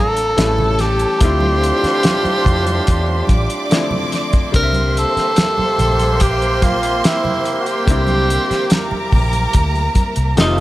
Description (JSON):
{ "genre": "lush 1970s-style soul", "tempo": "72 BPM", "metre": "4/4", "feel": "straight", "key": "unclear", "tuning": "A4 = 440 Hz", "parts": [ { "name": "breathy tenor saxophone", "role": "melody", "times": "0.0-10.6 s", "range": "Eb4 to Bb4", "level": "-18 LUFS", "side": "equal", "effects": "none" }, { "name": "warm studio violin section", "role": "second line", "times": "0.0-10.6 s", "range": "Bb3 to D6", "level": "-23 LUFS", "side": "right 1 dB", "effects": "none" }, { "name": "bright grand piano", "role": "accompaniment", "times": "0.0-10.6 s", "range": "D3 to E5", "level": "-25 LUFS", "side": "left 4 dB", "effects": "none" }, { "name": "warm studio string section", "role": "sustained chords", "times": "0.0-10.6 s", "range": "Bb3 to D6", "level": "-30 LUFS", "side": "left 1 dB", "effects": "none" }, { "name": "vintage muted fingered electric bass", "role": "bass", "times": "0.0-10.6 s", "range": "F1 to F2", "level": "-19 LUFS", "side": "equal", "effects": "none" }, { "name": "cloth-damped thuddy drum kit", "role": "drums", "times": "0.2-10.6 s", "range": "hi-hat, kick drum, snare drum", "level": "-17 LUFS", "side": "equal", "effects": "none" }, { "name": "muted trombone section", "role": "stabs", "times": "0.4-10.6 s", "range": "A2 to G4", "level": "-25 LUFS", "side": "right 4 dB", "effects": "none" }, { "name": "congas", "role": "percussion", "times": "0.4-10.6 s", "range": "none", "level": "-27 LUFS", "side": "right 2 dB", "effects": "none" } ], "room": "light reverb, small room ambience", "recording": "none", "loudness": "-13 LUFS", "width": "side -16 dB against mid", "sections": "0.0-10.6 A section", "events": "none", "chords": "0.4 A7; 1.2 Dm9; 4.5 C7" }